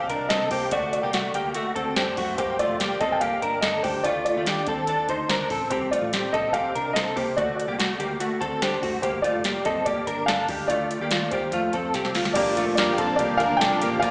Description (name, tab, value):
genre	jangly indie pop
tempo	144 BPM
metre	4/4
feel	straight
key	unclear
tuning	A4 = 440 Hz
part	warm upright piano	melody	0.0-14.1 s	C5 to G5	-26 LUFS	equal	slapback echo, tape echo
part	direct-recorded clean electric guitar	arpeggios	0.0-14.1 s	A3 to C5	-25 LUFS	equal	ensemble chorus, slapback echo, tape echo
part	vintage muted picked electric bass	bass	0.1-14.1 s	F1 to F#2	-36 LUFS	equal	none
part	soft vintage rhythm box	drums	0.1-14.1 s	crash cymbal, hi-hat, kick drum, snare drum	-28 LUFS	equal	slapback echo
part	picked plugged-in steel-string acoustic guitar	accompaniment	12.3-14.1 s	Bb2 to D4	-28 LUFS	right 1 dB	slapback echo
part	combo organ	accompaniment	12.4-14.1 s	D4 to F5	-27 LUFS	equal	slapback echo
room	moderate club reverb, RT60 0.5 s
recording	live gig heard through the venue's PA, recital hall reverb, small speaker sound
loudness	-21 LUFS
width	side -32 dB against mid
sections	0.0-12.4 A section; 12.4-14.1 B section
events	drum fill 11.9-12.4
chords	0.0 C5; 0.7 D; 2.4 Gm; 3.8 Dm; 5.7 C5; 7.4 D; 9.0 Gm; 10.5 Dm; 11.5 F; 12.4 Bb